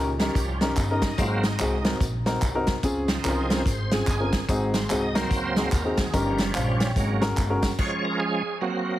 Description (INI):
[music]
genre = uptempo gospel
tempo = 145 BPM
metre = 4/4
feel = swing 62% on 8ths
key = Db major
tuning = A4 = 440 Hz
[part]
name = dark upright piano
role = accompaniment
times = 0.0-7.7 s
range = G2 to G5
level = -27 LUFS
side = left 2 dB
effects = none
[part]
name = upright bass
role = bass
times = 0.0-7.7 s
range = G1 to Eb2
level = -29 LUFS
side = equal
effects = none
[part]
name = bright tonewheel organ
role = sustained chords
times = 0.2-9.0 s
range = F3 to Eb5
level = -29 LUFS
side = right 3 dB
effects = slow rotary speaker, chorus vibrato
[part]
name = natural country drum kit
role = drums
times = 0.2-7.9 s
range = crash cymbal, hi-hat, kick drum, snare drum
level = -26 LUFS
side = equal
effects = none
[part]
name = tambourine and handclaps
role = percussion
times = 0.2-7.7 s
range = none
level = -36 LUFS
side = right 1 dB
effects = none
[sound]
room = light reverb, small room ambience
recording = heavily compressed radio sound, multiband compression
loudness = -22 LUFS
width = side -14 dB against mid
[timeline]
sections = 0.0-9.0 A section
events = tonewheel organ solo 0.0-9.0; stop 7.8-9.0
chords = 0.0 Eb7; 1.2 Ab7; 2.8 Dbmaj7; 4.5 Ab7; 6.1 Eb7/G; 7.0 Ab9sus4; 7.8 Db